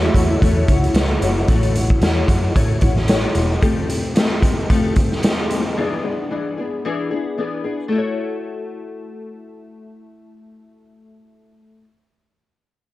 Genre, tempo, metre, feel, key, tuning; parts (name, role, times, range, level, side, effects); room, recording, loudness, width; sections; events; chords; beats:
indie pop, bedroom pop; 112 BPM; 4/4; swing 55% on 16ths; A major; A4 = 440 Hz
nylon-string guitar; accompaniment; 0.0-11.9 s; E3 to C#5; -23 LUFS; left 3 dB; analog chorus, vibrato effect
warbly lo-fi synth keys; accompaniment; 0.0-1.5 s; A3 to E5; -25 LUFS; right 3 dB; chorus, cassette tape
vintage muted fingered electric bass; bass; 0.0-3.6 s; E1 to A2; -20 LUFS; equal
raw garage drum kit; drums; 0.1-5.6 s; hi-hat, kick drum, snare drum; -18 LUFS; equal
light reverb, studio ambience; -16 LUFS; side -16 dB against mid
0.0-7.9 A section; 7.9-12.2 B section
0.0 A6; 3.6 Fadd9; 5.8 E7; 7.9 A6
0.42 0.95 | 1.49 2.02 2.56 3.09 | 3.63 4.16 4.70 5.23 | 5.77 6.30 6.84 7.38 | 7.91 8.45 8.99 9.52 | 10.06 10.60 11.13 11.67